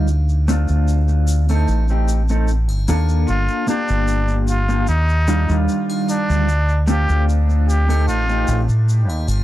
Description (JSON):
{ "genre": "trip hop", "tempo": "75 BPM", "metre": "4/4", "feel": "straight", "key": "unclear", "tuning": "A4 = 444 Hz", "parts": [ { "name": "mellow electric guitar", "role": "accompaniment", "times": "0.0-8.6 s", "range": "Eb3 to A4", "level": "-22 LUFS", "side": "left 1 dB", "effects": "tremolo, vintage 12-bit sampler grit, tape echo" }, { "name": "deep dub fingered electric bass", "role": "bass", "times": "0.0-9.4 s", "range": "G1 to A2", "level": "-16 LUFS", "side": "equal", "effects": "none" }, { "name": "tube shaker and triangle", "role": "percussion", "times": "0.1-9.4 s", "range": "none", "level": "-35 LUFS", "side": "left 3 dB", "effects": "none" }, { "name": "trumpet with straight mute", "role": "melody", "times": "3.3-8.6 s", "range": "D4 to G4", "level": "-23 LUFS", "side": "equal", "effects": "dub echo" } ], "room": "little or no reverb", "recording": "dry, gritty hardware recording, cassette tape", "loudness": "-15 LUFS", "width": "side -14 dB against mid", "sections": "0.0-9.4 A section", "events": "none", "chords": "0.1 Dm7; 1.7 Am7b5; 3.3 Gm7; 4.9 Ebmaj9; 6.5 Dm7; 8.1 Am7b5", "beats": "| 0.08 0.88 1.68 2.48 | 3.28 4.08 4.88 5.68 | 6.48 7.28 8.08 8.88" }